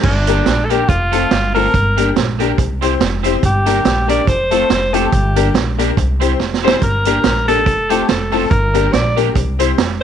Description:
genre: ska.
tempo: 142 BPM.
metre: 4/4.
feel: swing 56% on 8ths.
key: G minor.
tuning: A4 = 440 Hz.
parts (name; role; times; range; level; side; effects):
clear alto saxophone; melody; 0.0-10.0 s; D4 to D5; -17 LUFS; equal; none.
upright bass; bass; 0.0-10.0 s; F1 to C2; -18 LUFS; equal; tube saturation.
street-band drum kit; drums; 0.0-9.9 s; crash cymbal, hi-hat, kick drum, snare drum; -18 LUFS; right 5 dB; none.
electric guitar at the edge of break-up; accompaniment; 0.3-9.7 s; A3 to C5; -24 LUFS; right 13 dB; wide subtle chorus.
honky-tonk upright piano; stabs; 0.3-9.7 s; A3 to C5; -20 LUFS; left 14 dB; none.
room: light reverb, small room ambience.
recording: 1960s-style stereo with parts hard left and right.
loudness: -12 LUFS.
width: side -9 dB against mid.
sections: 0.0-10.0 A section.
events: alto saxophone solo 0.0-10.0; drum fill 6.4-6.8.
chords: 0.0 Gm; 0.9 F; 1.7 Gm; 2.6 C; 3.4 Gm; 4.3 F; 5.1 Gm; 6.0 C; 6.8 Gm; 7.7 F; 8.5 Gm; 9.4 C.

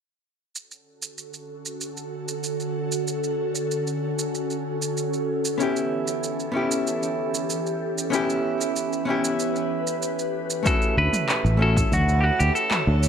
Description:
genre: sunset chillout.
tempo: 95 BPM.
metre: 4/4.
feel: straight.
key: D major.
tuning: A4 = 440 Hz.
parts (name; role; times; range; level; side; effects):
ethereal airy pad; sustained chords; 1.3-13.1 s; D3 to A5; -28 LUFS; equal; ensemble chorus, built-in reverb, phaser.
deep house drum kit; drums; 0.6-13.1 s; handclaps, shaker, toms; -29 LUFS; right 2 dB; overdrive, studio reverb.
archtop guitar, miked and amplified; accompaniment; 5.6-13.1 s; A3 to G4; -26 LUFS; moving between left 3 dB and right 5 dB; auto-pan, digital delay.
semi-hollow electric guitar; melody; 10.7-13.1 s; F#4 to B4; -23 LUFS; equal; spring reverb, digital delay.
electronic kick drum; drums; 10.7-11.9 s; none; -25 LUFS; equal; overdrive, studio reverb.
sustaining fretless electric bass; bass; 11.0-13.1 s; A1 to D2; -20 LUFS; equal; none.
room: light reverb.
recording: none.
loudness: -22 LUFS.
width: side -7 dB against mid.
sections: 0.6-10.7 A section; 10.7-13.1 B section.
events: none.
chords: 0.6 Dmaj7; 5.3 A7; 10.7 Dmaj7.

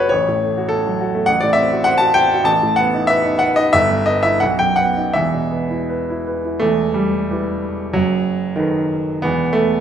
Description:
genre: classical, romantic character piece for solo piano.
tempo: 79-103 BPM.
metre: 2/4.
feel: rubato.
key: E minor.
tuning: A4 = 440 Hz.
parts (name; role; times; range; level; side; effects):
warm baby grand piano; solo; 0.0-9.8 s; E1 to A5; -15 LUFS; equal; none.
room: moderate recital hall reverb, RT60 1.3 s.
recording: none.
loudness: -15 LUFS.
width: side -9 dB against mid.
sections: 0.0-6.6 A section; 6.6-9.8 B section.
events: none.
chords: 0.1 F#m/A; 1.3 F#dim/A; 2.5 B7/A; 3.7 Em/G; 4.4 B; 5.1 E5; 6.6 Em; 7.9 B7/F#; 9.2 E5.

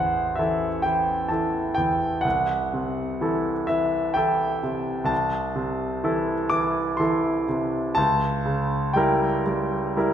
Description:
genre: classical, romantic nocturne for solo piano.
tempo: 63 BPM.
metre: 3/4.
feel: rubato.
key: unclear.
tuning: A4 = 440 Hz.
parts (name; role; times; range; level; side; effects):
clear concert grand piano; solo; 0.0-10.1 s; A1 to D6; -22 LUFS; equal; none.
room: wet recital hall reverb, RT60 1.6 s.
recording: none.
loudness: -22 LUFS.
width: side -9 dB against mid.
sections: 0.0-10.1 A section.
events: none.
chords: 0.0 A5; 2.2 Am/C; 8.0 C#dim7.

